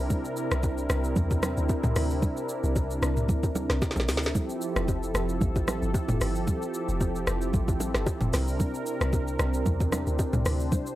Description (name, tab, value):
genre	amapiano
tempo	113 BPM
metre	4/4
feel	swing 55% on 16ths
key	unclear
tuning	A4 = 439 Hz
part	warm analog pad	sustained chords	0.0-11.0 s	C3 to C5	-30 LUFS	right 1 dB	chorus
part	deep log drum bass	bass	0.0-10.7 s	F1 to E2	-29 LUFS	equal	none
part	smooth R&B drum kit	drums	0.1-11.0 s	hi-hat, kick drum, rim click, shaker, snare drum, toms	-28 LUFS	equal	none
part	congas and bongos	percussion	0.1-10.9 s	none	-33 LUFS	right 1 dB	none
room	digital ambience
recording	dry, gritty hardware recording, transformer saturation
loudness	-25 LUFS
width	side -15 dB against mid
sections	0.0-11.0 A section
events	drum fill 3.8-4.3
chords	0.0 C9; 4.3 Fmaj7; 8.3 C9